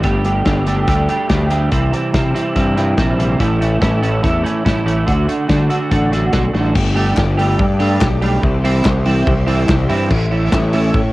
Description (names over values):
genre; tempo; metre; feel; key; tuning
indie rock; 143 BPM; 4/4; straight; unclear; A4 = 440 Hz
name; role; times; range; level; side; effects
overdriven electric guitar; riff; 0.0-11.0 s; A2 to G4; -18 LUFS; right 2 dB; ensemble chorus, cassette tape
twelve-string electric guitar; riff; 0.0-11.1 s; A2 to G4; -26 LUFS; left 5 dB; none
fuzz fingered electric bass; bass; 0.0-11.1 s; G1 to D3; -17 LUFS; equal; overdrive
loose indie drum kit; drums; 0.0-11.0 s; crash cymbal, hi-hat, kick drum, snare drum; -19 LUFS; equal; cassette tape
string machine, violas; sustained chords; 6.8-11.1 s; G4 to D6; -28 LUFS; equal; ensemble chorus, cassette tape
group handclap; percussion; 7.2-10.6 s; none; -29 LUFS; left 3 dB; none
room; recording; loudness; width
small room ambience; home recording on cassette; -13 LUFS; side -18 dB against mid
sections
0.0-6.8 A section; 6.8-11.1 B section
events
none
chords
0.0 Gsus2; 1.7 C; 3.4 A; 5.1 D; 6.8 Gsus2; 8.4 C; 10.1 A